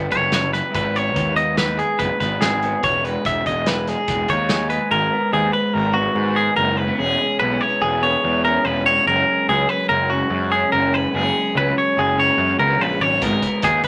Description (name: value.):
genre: math rock and midwest emo.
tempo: 144 BPM.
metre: 5/4.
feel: straight.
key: unclear.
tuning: A4 = 440 Hz.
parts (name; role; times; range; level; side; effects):
electric guitar through a small old amp; accompaniment; 0.0-13.9 s; E2 to G#4; -26 LUFS; equal; spring reverb.
fuzz picked electric bass; bass; 0.0-13.8 s; E1 to G#2; -27 LUFS; equal; overdrive.
twangy electric guitar; arpeggios; 0.1-13.9 s; F#4 to E5; -21 LUFS; equal; none.
loose indie drum kit; drums; 0.1-4.8, 13.2-13.9 s; hi-hat, kick drum, snare drum; -28 LUFS; equal; none.
room: moderate club reverb, RT60 0.6 s.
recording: vinyl crackle.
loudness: -19 LUFS.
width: mono.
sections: 0.0-4.9 A section; 4.9-13.9 B section.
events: none.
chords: 0.0 Gmaj7; 0.7 G#m7; 2.8 Emaj9; 4.9 G#m9; 7.0 E6; 9.1 F#9; 13.2 G#m9.